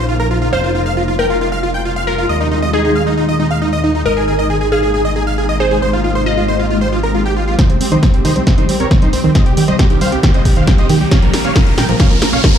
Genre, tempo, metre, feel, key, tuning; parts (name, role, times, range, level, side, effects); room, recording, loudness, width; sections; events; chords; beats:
uplifting trance; 136 BPM; 4/4; straight; A4 = 438 Hz
big supersaw lead; melody; 0.0-12.6 s; C4 to G5; -18 LUFS; right 1 dB; sidechain pumping, low-pass filter, dub echo
glassy wavetable pluck; second line; 0.0-7.5 s; Ab4 to F5; -19 LUFS; left 1 dB; chorus, ping-pong delay
fat analog bass; bass; 0.0-12.4 s; F1 to Eb2; -19 LUFS; equal; sidechain pumping
analog pluck; arpeggios; 7.6-12.6 s; Eb3 to Db4; -18 LUFS; right 2 dB; chorus, sidechain pumping, ping-pong delay
electronic kick drum; drums; 7.6-12.5 s; -12 LUFS; equal
punchy analog drum machine; drums; 7.6-12.6 s; hi-hat, snare drum; -20 LUFS; equal
riser; sound effects; 9.7-12.6 s; -24 LUFS; equal
light reverb, digital ambience; played on a big sound system in a bare room, large studio reverb; -11 LUFS; side -8 dB against mid
0.0-7.6 A section; 7.6-12.6 B section
build-up 7.6-12.6; drum fill 7.6-12.6; filter sweep on supersaw synth 7.6-12.6; filter sweep on synth pluck 7.6-12.6; riser 9.7-12.6
0.0 Bbm; 0.5 Fmadd9; 2.3 Ebsus4; 4.1 Abadd9; 5.8 Fmadd9/Ab; 7.6 Cm; 11.1 Bbm
0.09 | 0.53 0.97 1.41 1.85 | 2.29 2.73 3.17 3.62 | 4.06 4.50 4.94 5.38 | 5.82 6.26 6.70 7.14 | 7.59 8.03 8.47 8.91 | 9.35 9.79 10.23 10.68 | 11.12 11.56 12.00 12.44